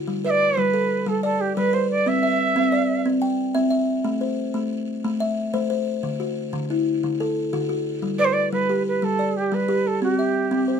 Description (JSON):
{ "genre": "southern african traditional, mbira-style interlocking cycle", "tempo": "121 BPM (dotted quarters)", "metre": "12/8", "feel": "straight", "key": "G major", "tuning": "A4 = 440 Hz", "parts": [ { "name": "buzzing kalimba", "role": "arpeggios", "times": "0.0-10.8 s", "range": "D3 to G5", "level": "-22 LUFS", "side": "left 1 dB", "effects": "none" }, { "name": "Native American-style cedar flute", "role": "melody", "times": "0.3-3.1, 8.2-10.8 s", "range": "G4 to E5", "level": "-22 LUFS", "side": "right 3 dB", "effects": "none" } ], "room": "moderate studio reverb, RT60 0.6 s", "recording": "minimal, uncompressed stereo recording", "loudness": "-20 LUFS", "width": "side -7 dB against mid", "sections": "0.0-8.0 A section; 8.0-10.8 A section", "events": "none", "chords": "0.1 G; 2.1 C; 4.0 Am; 6.0 D; 8.0 G; 10.0 C" }